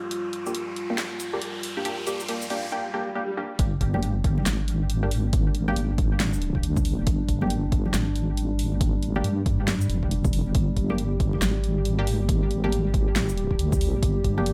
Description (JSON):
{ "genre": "deep dubstep", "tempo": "138 BPM", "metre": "4/4", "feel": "swing 61% on 16ths, half-time", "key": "G phrygian", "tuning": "A4 = 440 Hz", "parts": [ { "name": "dark analog pad", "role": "sustained chords", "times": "0.0-14.5 s", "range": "G3 to G4", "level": "-34 LUFS", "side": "equal", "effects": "chorus" }, { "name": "riser and swell", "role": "sound effects", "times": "0.0-3.6 s", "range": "none", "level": "-37 LUFS", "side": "equal", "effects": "none" }, { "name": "deep house drum kit", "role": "drums", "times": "0.1-14.5 s", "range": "hi-hat, shaker, snare drum", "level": "-33 LUFS", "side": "equal", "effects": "high-pass filter on hats, studio reverb, high-pass filter on perc, high-pass filter on snare" }, { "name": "filtered dub chord stab", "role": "stabs", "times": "0.5-14.5 s", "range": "Bb3 to G4", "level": "-35 LUFS", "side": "equal", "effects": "phaser, subtle chorus, dub echo" }, { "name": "deep soft wobble bass", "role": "bass", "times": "3.6-14.5 s", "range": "F1 to G2", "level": "-28 LUFS", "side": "equal", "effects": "chorus" }, { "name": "electronic kick drum", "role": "drums", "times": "3.6-14.3 s", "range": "none", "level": "-28 LUFS", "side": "equal", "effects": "studio reverb" }, { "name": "congas", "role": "percussion", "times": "3.9-14.4 s", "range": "none", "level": "-35 LUFS", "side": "equal", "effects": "dub echo" } ], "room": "light reverb", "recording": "none", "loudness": "-25 LUFS", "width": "mono", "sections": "0.0-3.6 A section; 3.6-14.5 B section", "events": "build-up 0.0-3.6; riser 0.0-2.7; filter sweep on synth stab 0.0-3.6; swell 2.7-3.6; drop 3.6-14.5", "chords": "0.0 Gm; 3.6 G5" }